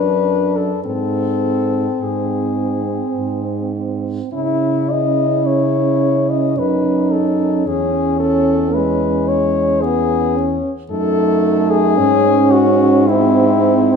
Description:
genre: classical, lyrical piece for horn quartet.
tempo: 51-56 BPM.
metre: 3/4.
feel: rubato.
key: C# minor.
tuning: A4 = 436 Hz.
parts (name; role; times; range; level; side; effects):
clear French horn; melody; 0.0-14.0 s; E4 to D#5; -18 LUFS; left 9 dB; none.
warm French horn; second line; 0.0-14.0 s; B#3 to D#4; -21 LUFS; right 9 dB; none.
mellow French horn; accompaniment; 0.0-14.0 s; G#3 to E4; -19 LUFS; left 1 dB; none.
dark French horn; bass; 0.0-14.0 s; E2 to C#3; -20 LUFS; right 4 dB; none.
room: moderate recital hall reverb, RT60 1.8 s.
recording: minimal, uncompressed stereo recording.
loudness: -14 LUFS.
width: side -6 dB against mid.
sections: 0.0-14.0 A section.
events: none.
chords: 0.0 D/F#; 0.9 G#; 4.3 C#m; 6.6 F#m; 7.7 C#m/E; 10.9 D#dim/F#; 12.0 C#5/G#; 13.1 G#.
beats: | 0.86 2.02 3.17 | 4.33 5.46 6.58 | 7.67 8.76 9.83 | 10.90 11.98 13.08.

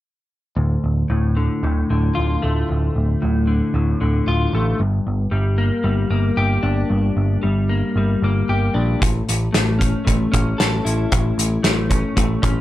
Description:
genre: quiet-loud alternative rock.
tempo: 114 BPM.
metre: 4/4.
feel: straight.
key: D minor.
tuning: A4 = 441 Hz.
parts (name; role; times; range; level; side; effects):
clean electric guitar; arpeggios; 0.6-12.6 s; D2 to A4; -21 LUFS; left 2 dB; analog chorus.
picked electric bass; bass; 0.6-12.6 s; D1 to Bb1; -20 LUFS; equal; none.
loose indie drum kit; drums; 9.0-12.6 s; hi-hat, kick drum, snare drum; -19 LUFS; equal; none.
room: little or no reverb.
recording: none.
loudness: -17 LUFS.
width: side -14 dB against mid.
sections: 0.6-12.6 A section.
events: none.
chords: 0.6 Dm; 4.8 Gm; 9.0 A.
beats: | 0.58 1.11 1.64 2.17 | 2.69 3.22 3.75 4.28 | 4.80 5.33 5.86 6.39 | 6.91 7.44 7.97 8.49 | 9.02 9.55 10.07 10.60 | 11.12 11.65 12.18.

